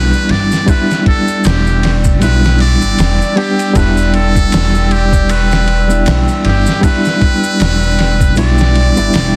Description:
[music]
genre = trip hop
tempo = 78 BPM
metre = 4/4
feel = swing 57% on 16ths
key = E minor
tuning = A4 = 440 Hz
[part]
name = trumpet with metal mute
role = melody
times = 0.0-9.4 s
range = G4 to D5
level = -20 LUFS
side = equal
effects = tape echo
[part]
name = reed electric piano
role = accompaniment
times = 0.0-9.4 s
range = G3 to G4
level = -18 LUFS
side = equal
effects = fast tremolo, tape echo
[part]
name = dark analog pad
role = sustained chords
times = 0.0-9.4 s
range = D5 to E6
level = -26 LUFS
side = equal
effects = chorus
[part]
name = upright bass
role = bass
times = 0.0-9.3 s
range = E1 to B1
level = -16 LUFS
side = equal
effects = none
[part]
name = maracas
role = percussion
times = 0.1-9.3 s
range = none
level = -32 LUFS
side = equal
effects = none
[part]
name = dusty soul sampler-style drum kit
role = drums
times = 0.3-9.4 s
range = kick drum, ride cymbal, snare drum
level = -18 LUFS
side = equal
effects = none
[sound]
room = small room ambience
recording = dense, heavily limited modern master, vinyl crackle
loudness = -12 LUFS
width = mono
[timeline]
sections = 0.0-9.4 A section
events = none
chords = 0.0 Em7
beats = | 0.68 1.44 2.21 2.98 | 3.75 4.52 5.29 6.06 | 6.83 7.60 8.37 9.14

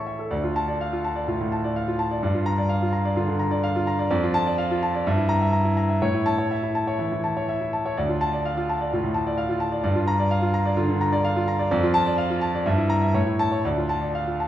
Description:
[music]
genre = classical, virtuoso piano study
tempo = 126 BPM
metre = 4/4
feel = rubato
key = D minor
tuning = A4 = 440 Hz
[part]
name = clear grand piano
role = solo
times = 0.0-14.5 s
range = D2 to C#6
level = -21 LUFS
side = equal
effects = none
[sound]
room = wet recital hall reverb, RT60 1.6 s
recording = heard from further back in the room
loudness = -21 LUFS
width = side -12 dB against mid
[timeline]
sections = 0.3-14.5 A section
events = none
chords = 0.3 Dm; 2.2 Gm7; 4.1 Dm/F; 5.0 Edim/G; 6.0 A; 8.0 Dm; 9.8 Gm7; 11.7 Dm/F; 12.7 Edim/G; 13.1 A; 13.6 Dm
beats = | 0.31 0.81 1.28 1.76 | 2.23 2.70 3.17 3.63 | 4.10 4.58 5.05 5.52 | 6.01 6.50 6.99 7.49 | 7.97 8.45 8.92 9.38 | 9.84 10.31 10.77 11.24 | 11.71 12.18 12.65 13.14 | 13.64 14.14

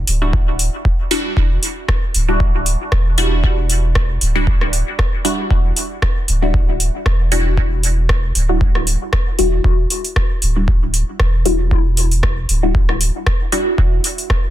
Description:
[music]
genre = dub techno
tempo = 116 BPM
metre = 4/4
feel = swing 55% on 16ths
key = E minor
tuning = A4 = 440 Hz
[part]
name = filtered dub chord stab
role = stabs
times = 0.0-14.5 s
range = G3 to F#4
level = -21 LUFS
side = left 1 dB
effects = phaser, sidechain pumping, dub echo
[part]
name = soft dub sub bass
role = bass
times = 0.0-14.0 s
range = D1 to E1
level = -17 LUFS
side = equal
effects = sidechain pumping
[part]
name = booming analog drum machine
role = drums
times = 0.1-14.4 s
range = hi-hat, rim click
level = -21 LUFS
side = equal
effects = overdrive
[part]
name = electronic kick drum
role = drums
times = 0.3-14.4 s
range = none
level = -17 LUFS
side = equal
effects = overdrive
[sound]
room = little or no reverb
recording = dense, heavily limited modern master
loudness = -14 LUFS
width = side -13 dB against mid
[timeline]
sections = 0.0-9.6 A section; 9.6-14.5 A section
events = none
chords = 0.0 Em9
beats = 0.33 0.85 | 1.37 1.89 2.40 2.92 | 3.44 3.96 4.47 4.99 | 5.51 6.02 6.54 7.06 | 7.58 8.09 8.61 9.13 | 9.64 10.16 10.68 11.20 | 11.71 12.23 12.75 13.27 | 13.78 14.30

